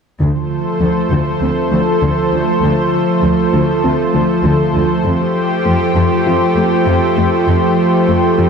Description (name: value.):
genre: cinematic.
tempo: 99 BPM.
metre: 4/4.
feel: straight.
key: D minor.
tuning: A4 = 440 Hz.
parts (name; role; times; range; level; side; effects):
lush unison pad; sustained chords; 0.2-8.5 s; F3 to C5; -13 LUFS; equal; chorus.
soft round pluck; arpeggios; 0.2-8.5 s; D3 to F4; -19 LUFS; left 2 dB; chorus, ping-pong delay.
warm symphonic cello section; bass; 0.2-8.5 s; D2 to F2; -19 LUFS; equal; none.
room: moderate scoring stage reverb, RT60 1.7 s.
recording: none.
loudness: -12 LUFS.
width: side -6 dB against mid.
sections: 0.2-8.5 A section.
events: none.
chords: 0.2 Dm7; 5.1 Fadd9.